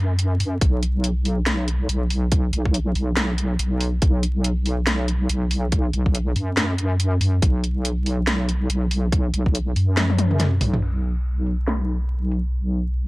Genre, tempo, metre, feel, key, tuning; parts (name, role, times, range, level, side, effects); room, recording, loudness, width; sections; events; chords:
deep dubstep; 141 BPM; 4/4; swing 58% on 16ths, half-time; A4 = 441 Hz
deep soft wobble bass; bass; 0.0-13.1 s; B1 to F#2; -20 LUFS; equal; chorus, tube saturation
garage drum kit; drums; 0.2-12.4 s; crash cymbal, hi-hat, snare drum, toms; -24 LUFS; equal; low-pass filter on hats, low-pass filter on toms, low-pass filter on snare, low-pass filter on cymbals, low-pass filter on room
electronic kick drum; drums; 0.6-9.5 s; -19 LUFS; equal
little or no reverb; vinyl crackle; -19 LUFS; side -21 dB against mid
0.0-10.8 A section; 10.8-13.1 B section
drop 0.0-10.8; drum fill 10.0-10.8; kick drops out 10.4-10.8